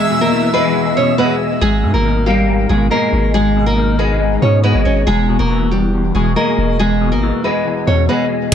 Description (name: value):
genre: hip hop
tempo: 139 BPM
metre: 4/4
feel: half-time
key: unclear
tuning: A4 = 439 Hz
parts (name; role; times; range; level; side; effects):
- nylon-string guitar; melody; 0.0-8.5 s; G3 to C#5; -17 LUFS; right 1 dB; low-pass filter, ping-pong delay
- semi-hollow electric guitar; accompaniment; 0.0-8.5 s; E2 to A#3; -17 LUFS; left 3 dB; ensemble chorus, low-pass filter
- airy breathy pad; sustained chords; 0.0-1.6 s; E5 to E6; -22 LUFS; right 2 dB; chorus
- long sustained 808-style bass; bass; 1.6-8.5 s; E1 to G#2; -16 LUFS; equal; none
room: little or no reverb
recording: none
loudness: -12 LUFS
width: side -8 dB against mid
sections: 0.0-1.6 A section; 1.6-8.5 B section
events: none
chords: 0.0 E; 1.6 G#madd9; 5.1 E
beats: 0.32 0.75 1.18 | 1.61 2.05 2.48 2.91 | 3.34 3.77 4.20 4.64 | 5.07 5.50 5.93 6.36 | 6.79 7.23 7.66 8.09 | 8.52